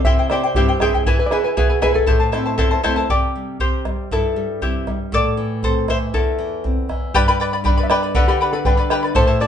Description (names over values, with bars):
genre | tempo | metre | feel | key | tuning
andean folk, Andean ensemble | 118 BPM | 2/4 | straight | unclear | A4 = 441 Hz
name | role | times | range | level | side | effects
hollow-body jazz guitar | melody | 0.0-2.7, 7.8-9.5 s | G4 to E5 | -21 LUFS | left 1 dB | none
charango | accompaniment | 0.0-9.5 s | E4 to B5 | -20 LUFS | left 2 dB | none
nylon-string guitar | accompaniment | 0.0-9.5 s | E2 to G#4 | -23 LUFS | equal | none
bombo | percussion | 0.0-9.3 s | none | -20 LUFS | equal | none
room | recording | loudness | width
wet studio reverb, RT60 0.8 s | band playing live in one room, nothing above 10.8 kHz | -16 LUFS | side -8 dB against mid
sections
0.0-3.1 A section; 3.1-7.1 B section; 7.1-9.5 C section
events
charango solo 3.1-7.1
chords
0.0 C; 1.1 E; 2.1 Am; 3.1 C; 5.1 Am; 7.1 G